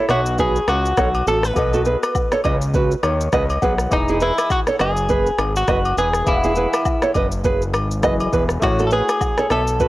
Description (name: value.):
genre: afrobeats.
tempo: 102 BPM.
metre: 4/4.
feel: swing 58% on 16ths.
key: E major.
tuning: A4 = 440 Hz.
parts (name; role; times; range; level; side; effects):
direct-recorded clean electric guitar; melody; 0.0-9.9 s; D#4 to B4; -21 LUFS; left 1 dB; tape echo.
warm grand piano; accompaniment; 0.0-9.9 s; E3 to F#5; -26 LUFS; left 2 dB; none.
nylon-string guitar; riff; 0.0-9.9 s; E4 to E5; -21 LUFS; right 3 dB; none.
fat analog bass; bass; 0.1-9.9 s; E1 to D#2; -22 LUFS; equal; none.
afro-pop drum kit; drums; 0.1-9.9 s; kick drum, rim click, shaker; -23 LUFS; equal; vintage 12-bit sampler grit.
agogo bells and woodblock; percussion; 0.1-9.7 s; none; -27 LUFS; left 2 dB; none.
room: small room ambience.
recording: dry, gritty hardware recording.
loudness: -16 LUFS.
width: side -16 dB against mid.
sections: 0.0-9.9 A section.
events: grand piano fill 2.7-3.9.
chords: 0.0 A6; 1.6 B7; 3.9 Emaj7; 8.6 A6.